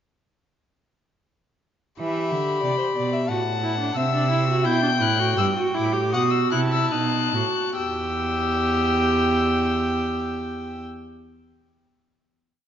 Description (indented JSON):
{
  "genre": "classical, baroque-style fugue for string quartet",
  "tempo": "69-93 BPM",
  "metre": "4/4",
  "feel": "straight",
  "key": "E minor",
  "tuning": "A4 = 440 Hz",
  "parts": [
    { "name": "warm violin", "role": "melody", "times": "2.0-10.8 s", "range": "A5 to G6", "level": "-27 LUFS", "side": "left 7 dB", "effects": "none" },
    { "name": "warm violin", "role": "second line", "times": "2.0-10.8 s", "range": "C5 to A5", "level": "-28 LUFS", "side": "left 1 dB", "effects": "none" },
    { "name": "warm viola", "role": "accompaniment", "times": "2.0-10.8 s", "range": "C4 to G4", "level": "-26 LUFS", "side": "right 1 dB", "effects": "none" },
    { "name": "rich cello", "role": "bass", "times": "2.0-10.9 s", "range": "E2 to E3", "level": "-25 LUFS", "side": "right 2 dB", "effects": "none" }
  ],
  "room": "wet concert hall reverb, RT60 1.8 s",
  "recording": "nothing above 7.5 kHz",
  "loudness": "-20 LUFS",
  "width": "side -9 dB against mid",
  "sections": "2.0-7.8 exposition; 7.8-11.2 final chord",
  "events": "slowing down 2.0-9.5",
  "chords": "2.0 Em; 3.3 Am; 4.7 Em; 6.1 B7; 7.8 Em",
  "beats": "| 1.99 2.64 3.29 3.96 | 4.65 5.38 6.13 6.92 | 7.77 8.64 9.51 10.38"
}